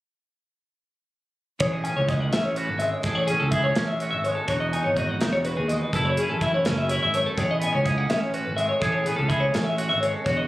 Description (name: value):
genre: math rock and midwest emo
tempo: 83 BPM (dotted quarters)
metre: 6/8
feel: straight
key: A lydian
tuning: A4 = 440 Hz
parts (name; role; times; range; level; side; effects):
- twangy electric guitar; accompaniment; 1.6-10.5 s; E2 to G#4; -28 LUFS; right 3 dB; lush chorus
- twelve-string electric guitar; arpeggios; 1.6-10.5 s; E4 to G#5; -25 LUFS; left 2 dB; harmonic tremolo
- fuzz fingered electric bass; bass; 1.6-10.5 s; E1 to D#2; -27 LUFS; equal; overdrive
- modern studio drum kit; drums; 1.6-10.4 s; hi-hat, kick drum, snare drum; -30 LUFS; equal; none
room: light reverb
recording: recorded on a phone in the room, studio reverb, compression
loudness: -21 LUFS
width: side -16 dB against mid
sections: 1.6-10.5 A section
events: none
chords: 1.6 Amaj7; 4.5 Emaj9; 5.9 F#m9; 7.4 Amaj7